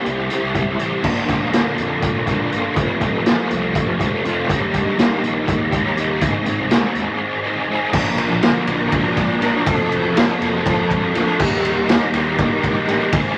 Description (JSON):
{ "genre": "psychedelic rock", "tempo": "244 BPM (eighths)", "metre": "7/8", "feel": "straight", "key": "unclear", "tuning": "A4 = 441 Hz", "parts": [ { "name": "crunchy overdriven guitar", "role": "riff", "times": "0.0-13.4 s", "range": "F2 to Bb4", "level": "-21 LUFS", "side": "equal", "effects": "rotary speaker" }, { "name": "fuzz picked electric bass", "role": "bass", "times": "0.1-13.4 s", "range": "F1 to Eb3", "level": "-30 LUFS", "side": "equal", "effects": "overdrive" }, { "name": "raw garage drum kit", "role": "drums", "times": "0.1-13.2 s", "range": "crash cymbal, hi-hat, kick drum, ride cymbal, snare drum", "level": "-22 LUFS", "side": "equal", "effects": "none" } ], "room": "moderate large studio reverb, RT60 1.3 s", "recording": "vinyl crackle", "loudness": "-19 LUFS", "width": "mono", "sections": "0.0-1.0 A section; 1.0-7.9 B section; 7.9-13.4 C section", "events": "break 7.2-7.9", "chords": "0.0 C; 1.0 Bb; 2.8 F; 4.5 Eb; 6.2 Ab; 7.9 Bb; 9.7 F; 11.4 Eb", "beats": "0.06 0.31 0.55 0.80 | 1.05 1.29 1.54 1.78 2.03 2.28 2.52 | 2.77 3.02 3.26 3.51 3.75 4.00 4.25 | 4.49 4.74 4.99 5.23 5.48 5.72 5.97 | 6.22 6.46 6.71 6.96 7.20 7.45 7.69 | 7.94 8.19 8.43 8.68 8.93 9.17 9.42 | 9.67 9.91 10.16 10.41 10.65 10.90 11.15 | 11.39 11.64 11.89 12.13 12.38 12.63 12.88 | 13.12 13.37" }